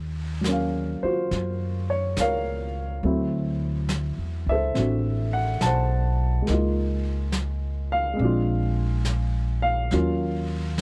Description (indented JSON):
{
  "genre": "jazz ballad",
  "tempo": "70 BPM",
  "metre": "4/4",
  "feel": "swing 66% on 8ths",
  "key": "unclear",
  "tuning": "A4 = 440 Hz",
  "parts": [
    { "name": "upright bass", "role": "bass", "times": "0.0-10.8 s", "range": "A1 to Gb2", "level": "-28 LUFS", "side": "equal", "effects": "none" },
    { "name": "dark baby grand piano", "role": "accompaniment", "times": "0.4-10.8 s", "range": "Gb3 to A5", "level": "-28 LUFS", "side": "equal", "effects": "none" },
    { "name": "vintage brush drum kit", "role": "drums", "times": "0.4-10.8 s", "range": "brushed snare drum, hi-hat, snare drum", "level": "-36 LUFS", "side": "equal", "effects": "none" }
  ],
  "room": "little or no reverb",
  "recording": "none",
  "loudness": "-25 LUFS",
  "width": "mono",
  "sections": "0.0-10.8 A section",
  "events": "none",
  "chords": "0.0 Ebm9; 3.0 D9; 6.5 Db6; 8.2 Bb7; 9.9 Ebm7"
}